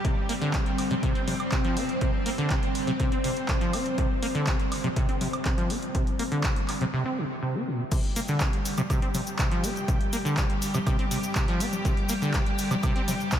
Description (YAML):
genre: acid house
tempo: 122 BPM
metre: 4/4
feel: straight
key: unclear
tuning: A4 = 440 Hz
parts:
  - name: string machine, full ensemble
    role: sustained chords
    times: 0.0-13.4 s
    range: G3 to G4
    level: -31 LUFS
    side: equal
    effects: ensemble chorus, sidechain pumping
  - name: acid bass, saw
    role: riff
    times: 0.0-13.4 s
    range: Bb2 to C4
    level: -30 LUFS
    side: equal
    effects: lush chorus, sidechain pumping, diffuse ambient delay
  - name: electronic kick drum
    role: drums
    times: 0.0-13.4 s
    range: none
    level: -27 LUFS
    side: equal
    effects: none
  - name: punchy analog drum machine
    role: drums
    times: 0.0-13.4 s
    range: congas, crash cymbal, handclaps, hi-hat, woodblock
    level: -33 LUFS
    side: equal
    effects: none
  - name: cabasa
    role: percussion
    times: 7.9-13.4 s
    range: none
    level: -38 LUFS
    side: left 3 dB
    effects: none
room: moderate cathedral reverb, RT60 5.7 s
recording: dreamy mix soaked in reverb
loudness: -24 LUFS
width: side -10 dB against mid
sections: 0.0-7.9 A section; 7.9-13.4 B section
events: break 6.9-7.9; drop 7.9-13.4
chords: 0.0 C5